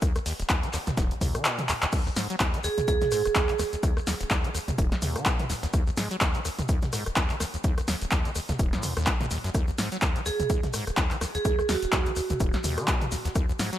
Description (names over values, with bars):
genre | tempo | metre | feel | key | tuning
acid house | 126 BPM | 4/4 | swing 57% on 16ths | Eb minor | A4 = 444 Hz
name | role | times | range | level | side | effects
acid bass, saw | riff | 0.0-13.8 s | Eb1 to Gb3 | -32 LUFS | equal | analog chorus, sidechain pumping
breakbeat sampler-style drum kit | drums | 0.0-13.8 s | hi-hat, shaker, snare drum | -41 LUFS | left 1 dB | none
electronic kick drum | drums | 0.0-13.5 s | none | -26 LUFS | equal | overdrive
punchy analog drum machine | drums | 0.0-13.8 s | crash cymbal, handclaps, hi-hat, rim click, snare drum, toms | -29 LUFS | equal | overdrive
tube shaker | percussion | 0.0-13.8 s | none | -40 LUFS | left 4 dB | none
vibraphone with hard mallets | melody | 2.6-3.6, 10.3-12.4 s | Gb4 to Ab4 | -29 LUFS | right 6 dB | tape echo
room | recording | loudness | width
light reverb, digital ambience | none | -24 LUFS | side -12 dB against mid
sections
0.0-13.8 A section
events
kick drops out 1.4-1.9; drum fill 1.7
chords
none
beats
| 0.02 0.50 0.97 1.45 | 1.93 2.40 2.88 3.35 | 3.83 4.31 4.78 5.26 | 5.74 6.21 6.69 7.17 | 7.64 8.12 8.59 9.07 | 9.55 10.02 10.50 10.97 | 11.45 11.93 12.40 12.88 | 13.36